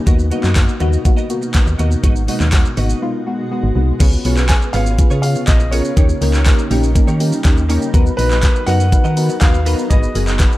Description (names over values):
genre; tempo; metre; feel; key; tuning
dance-pop; 122 BPM; 4/4; straight; G# dorian; A4 = 440 Hz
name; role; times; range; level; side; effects
granular cloud pad; sustained chords; 0.0-10.6 s; B2 to F#4; -28 LUFS; equal; built-in reverb, sidechain pumping
deep mellow chord stab; accompaniment; 0.1-10.6 s; G#3 to C#5; -21 LUFS; left 1 dB; chorus, phaser, sidechain pumping
direct-recorded clean electric guitar; riff; 0.1-10.6 s; A#3 to D#5; -30 LUFS; right 4 dB; ensemble chorus
solid FM bass; bass; 0.1-10.5 s; F#1 to D#3; -16 LUFS; equal; sidechain pumping
smooth R&B drum kit; drums; 0.1-10.6 s; crash cymbal, handclaps, hi-hat, kick drum, shaker; -14 LUFS; equal; none
group handclap; percussion; 0.6-10.5 s; none; -33 LUFS; left 3 dB; none
warm concert grand piano; melody; 4.5-10.6 s; B4 to G#5; -24 LUFS; equal; analog delay
room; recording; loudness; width
digital ambience; dry, gritty hardware recording; -12 LUFS; side -16 dB against mid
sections
0.0-4.0 A section; 4.0-10.6 B section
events
break 3.0-4.0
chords
0.1 Bmaj7; 2.0 G#m7; 4.0 C#7; 6.0 D#7; 7.9 Bmaj7; 9.9 G#m7